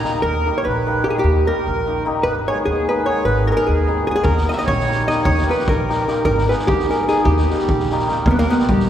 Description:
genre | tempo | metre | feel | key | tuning
balkan folk, Balkan wedding band | 299 BPM (eighths) | 5/8 | straight | unclear | A4 = 437 Hz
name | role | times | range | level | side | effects
accordion | second line | 0.0-8.9 s | G4 to Bb5 | -25 LUFS | right 2 dB | none
hammered dulcimer | accompaniment | 0.0-8.9 s | Eb3 to Ab4 | -22 LUFS | left 1 dB | none
street-band drum kit | percussion | 0.0-0.1, 4.2-8.8 s | kick drum, snare drum | -23 LUFS | equal | none
hollow-body jazz guitar | melody | 0.2-8.9 s | G3 to Fb5 | -20 LUFS | equal | none
upright bass | bass | 0.2-8.9 s | Ab1 to Eb2 | -22 LUFS | equal | none
room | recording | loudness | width
wet church reverb, RT60 2.6 s | recorded in a church or concert hall | -15 LUFS | side -10 dB against mid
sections
0.2-8.3 A section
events
none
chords
0.2 Eb; 2.2 Abm; 4.2 Eb; 6.3 Abm; 7.3 Eb

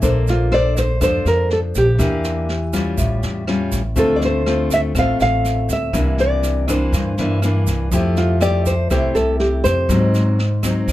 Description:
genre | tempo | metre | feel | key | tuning
bossa nova | 122 BPM | 4/4 | straight | F major | A4 = 441 Hz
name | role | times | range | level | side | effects
nylon-string guitar | accompaniment | 0.0-10.9 s | G2 to C5 | -20 LUFS | left 2 dB | none
upright bass | bass | 0.0-10.9 s | A1 to Ab2 | -20 LUFS | equal | none
jazz brush drum kit | drums | 0.0-10.9 s | kick drum, rim click, snare drum | -26 LUFS | equal | none
egg shaker | percussion | 0.0-10.9 s | none | -34 LUFS | right 9 dB | none
nylon-string guitar | melody | 0.3-10.9 s | F4 to F5 | -20 LUFS | equal | none
room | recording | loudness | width
light reverb | none | -15 LUFS | side -15 dB against mid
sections
0.0-10.9 A section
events
none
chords
0.0 Bbmaj9; 2.0 Em7b5; 3.0 A7b13; 4.0 Dm7; 5.9 C9; 7.9 Fmaj9; 9.9 Ab7

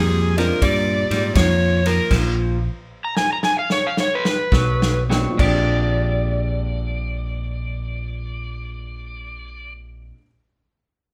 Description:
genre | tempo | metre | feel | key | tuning
electric blues shuffle | 67-83 BPM | 4/4 | swing 67% on 8ths | Bb mixolydian | A4 = 439 Hz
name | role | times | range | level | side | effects
overdriven slide guitar | melody | 0.0-9.7 s | Ab4 to Bb5 | -26 LUFS | equal | none
clean electric guitar | riff | 0.0-10.2 s | Bb2 to G4 | -28 LUFS | equal | none
fingered electric bass | bass | 0.0-10.1 s | Bb1 to Ab2 | -25 LUFS | equal | none
dark upright piano | accompaniment | 0.4-10.3 s | Bb2 to G5 | -32 LUFS | equal | none
natural country drum kit | drums | 0.4-5.7 s | crash cymbal, kick drum, ride cymbal, snare drum | -25 LUFS | equal | none
room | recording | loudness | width
light reverb | band playing live in one room | -20 LUFS | mono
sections
0.0-5.4 A section; 5.4-9.0 B section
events
slowing down 0.0-5.4; drum fill 2.1-5.4; stop 2.1-4.5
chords
0.0 Bb7; 2.1 Bb5; 4.5 B5; 5.4 Bb13

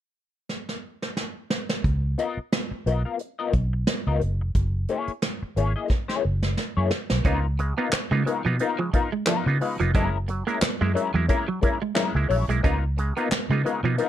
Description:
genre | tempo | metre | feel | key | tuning
funk | 89 BPM | 4/4 | swing 56% on 16ths | Db mixolydian | A4 = 442 Hz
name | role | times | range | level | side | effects
soft brush drum kit | drums | 0.5-14.1 s | handclaps, hi-hat, kick drum, snare drum | -26 LUFS | right 1 dB | none
vintage muted fingered electric bass | bass | 1.8-14.0 s | F1 to Db3 | -24 LUFS | equal | none
clean electric guitar | accompaniment | 2.2-14.1 s | Ab3 to F5 | -27 LUFS | left 7 dB | wah
clean electric guitar | riff | 7.2-13.9 s | F3 to Db4 | -29 LUFS | right 5 dB | ensemble chorus
auto-wah clav | stabs | 7.2-14.1 s | Db3 to F4 | -29 LUFS | right 4 dB | overdrive
room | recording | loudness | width
little or no reverb | dark, warm production | -22 LUFS | side -11 dB against mid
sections
0.0-1.8 A section; 1.8-7.3 B section; 7.3-14.1 C section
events
drum fill 0.5-1.8, 5.9-7.3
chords
0.0 N.C.; 1.8 Db13; 4.5 Gb9; 7.3 Db13; 9.9 Gb9; 12.6 Db13

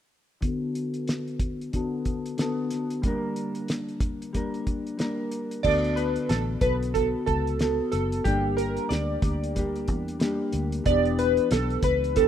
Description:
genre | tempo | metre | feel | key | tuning
indie pop, bedroom pop | 92 BPM | 4/4 | swing 60% on 16ths | D major | A4 = 443 Hz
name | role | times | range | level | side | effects
mellow electric guitar | accompaniment | 0.4-12.3 s | D3 to Bb4 | -29 LUFS | left 2 dB | analog chorus, vibrato effect, low-pass filter
cloth-damped thuddy drum kit | drums | 0.4-12.3 s | crash cymbal, hi-hat, kick drum, snare drum | -29 LUFS | equal | none
chorused retro synth keys | melody | 5.6-12.3 s | G4 to D5 | -25 LUFS | right 2 dB | wide subtle chorus
vintage muted fingered electric bass | bass | 5.6-12.3 s | E1 to E2 | -29 LUFS | equal | none
room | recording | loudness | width
small room ambience | rough home demo mix | -24 LUFS | side -9 dB against mid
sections
0.4-5.6 A section; 5.6-12.3 B section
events
filter sweep on clean electric guitar 0.4-5.6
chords
0.4 D6; 3.0 Gm; 5.6 D6; 8.3 Gm; 10.9 Em7

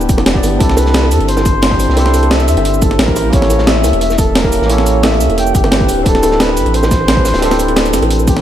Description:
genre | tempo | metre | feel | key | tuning
liquid drum and bass | 176 BPM | 4/4 | straight | unclear | A4 = 440 Hz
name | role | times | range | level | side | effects
mellow flugelhorn | melody | 0.0-8.4 s | G4 to G5 | -18 LUFS | left 1 dB | tape echo
tine electric piano | accompaniment | 0.0-8.4 s | Bb3 to D5 | -16 LUFS | equal | analog delay
warm sub bass | bass | 0.0-8.4 s | D1 to E2 | -15 LUFS | equal | tube saturation
breakbeat sampler-style drum kit | drums | 0.0-8.4 s | hi-hat, shaker, snare drum | -17 LUFS | equal | none
crunchy breakbeat drum kit | drums | 0.1-8.4 s | hi-hat, snare drum | -25 LUFS | equal | high-pass filter on hats, high-pass filter on snare, high-pass filter on room
electronic kick drum | drums | 0.1-8.3 s | none | -15 LUFS | equal | overdrive
bongos | percussion | 0.2-8.3 s | none | -23 LUFS | right 2 dB | none
room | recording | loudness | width
moderate lush hall reverb, RT60 2.1 s | dreamy mix soaked in reverb | -9 LUFS | side -11 dB against mid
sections
0.0-8.4 A section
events
none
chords
0.0 G6; 0.6 C69; 3.2 A7b9; 5.9 D9sus4

